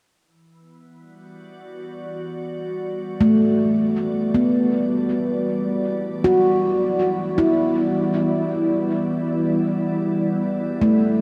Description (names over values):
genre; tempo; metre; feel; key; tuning
ambient; 79 BPM; 4/4; straight; E minor; A4 = 438 Hz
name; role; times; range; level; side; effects
glassy FM pad; sustained chords; 1.3-11.2 s; E3 to D5; -26 LUFS; equal; ensemble chorus, built-in reverb, shimmer reverb
handpan; arpeggios; 3.2-11.2 s; A3 to F#4; -22 LUFS; equal; diffuse ambient delay, shimmer reverb
room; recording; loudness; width
wet huge ambient reverb, RT60 8.4 s; none; -20 LUFS; mono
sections
0.1-11.2 A section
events
fade-in on ambient pad 0.1-11.2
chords
0.1 Em9